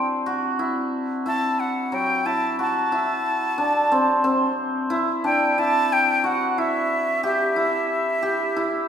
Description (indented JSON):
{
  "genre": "contemporary instrumental, contemporary",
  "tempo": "181 BPM (eighths)",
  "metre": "7/8",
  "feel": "straight",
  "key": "unclear",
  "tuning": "A4 = 440 Hz",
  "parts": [
    { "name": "breathy bright concert flute", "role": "melody", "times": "0.0-8.9 s", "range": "E5 to A5", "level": "-22 LUFS", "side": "left 1 dB", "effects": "none" },
    { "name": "hammered dulcimer", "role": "arpeggios", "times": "0.0-8.9 s", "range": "F#3 to G4", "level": "-22 LUFS", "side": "equal", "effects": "none" }
  ],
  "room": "wet recital hall reverb, RT60 1.8 s",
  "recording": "minimal, uncompressed stereo recording",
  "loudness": "-20 LUFS",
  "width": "side -8 dB against mid",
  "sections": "0.0-4.9 A section; 4.9-8.9 B section",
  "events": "none",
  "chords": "0.0 Am; 4.9 Cadd9",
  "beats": "| 0.27 0.60 0.93 1.27 1.60 1.93 2.26 | 2.59 2.92 3.26 3.59 3.92 4.25 4.58 | 4.92 5.25 5.58 5.91 6.24 6.57 6.90 | 7.24 7.57 7.90 8.23 8.56"
}